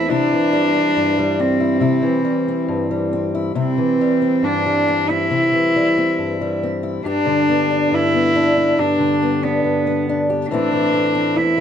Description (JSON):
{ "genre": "acoustic folk-pop ballad", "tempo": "69 BPM", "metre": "4/4", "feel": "straight", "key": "unclear", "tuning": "A4 = 440 Hz", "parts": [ { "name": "warm cello", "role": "melody", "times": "0.0-11.6 s", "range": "B3 to E4", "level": "-18 LUFS", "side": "right 1 dB", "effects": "none" }, { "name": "fingerpicked acoustic archtop guitar", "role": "accompaniment", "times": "0.0-11.6 s", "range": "E2 to G4", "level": "-19 LUFS", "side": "left 2 dB", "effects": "none" } ], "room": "light reverb", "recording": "dark, warm production", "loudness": "-15 LUFS", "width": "side -8 dB against mid", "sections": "0.0-11.6 A section", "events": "none", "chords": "0.1 C; 7.0 G; 10.5 Am" }